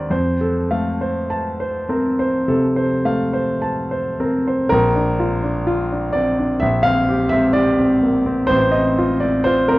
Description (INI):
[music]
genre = classical, romantic character piece for solo piano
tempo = 50-65 BPM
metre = 4/4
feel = rubato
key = Bb major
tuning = A4 = 440 Hz
[part]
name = warm grand piano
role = solo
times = 0.0-9.8 s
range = A1 to Bb5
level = -16 LUFS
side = equal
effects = none
[sound]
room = moderate large studio reverb, RT60 0.9 s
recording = worn, warbling old tape, cassette tape, warbly pitch drift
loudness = -16 LUFS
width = side -18 dB against mid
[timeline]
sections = 0.0-4.7 A section; 4.7-9.8 B section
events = none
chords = 0.1 F; 4.7 Bb; 6.6 C5/Bb; 8.5 F/A